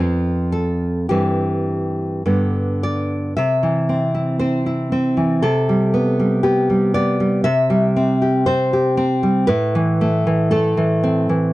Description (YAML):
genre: romantic piece for solo classical guitar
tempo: 52-60 BPM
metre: 2/4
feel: rubato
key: C major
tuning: A4 = 438 Hz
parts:
  - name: nylon-string guitar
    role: solo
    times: 0.0-11.5 s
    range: F2 to E5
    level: -16 LUFS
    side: equal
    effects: none
room: little or no reverb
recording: dry, close 1970s-style studio recording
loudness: -16 LUFS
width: side -17 dB against mid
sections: 0.0-3.4 A section; 3.4-11.5 B section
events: none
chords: 0.0 F; 1.1 C/G; 2.3 G; 3.4 C; 5.4 G/C; 7.5 C; 9.5 Am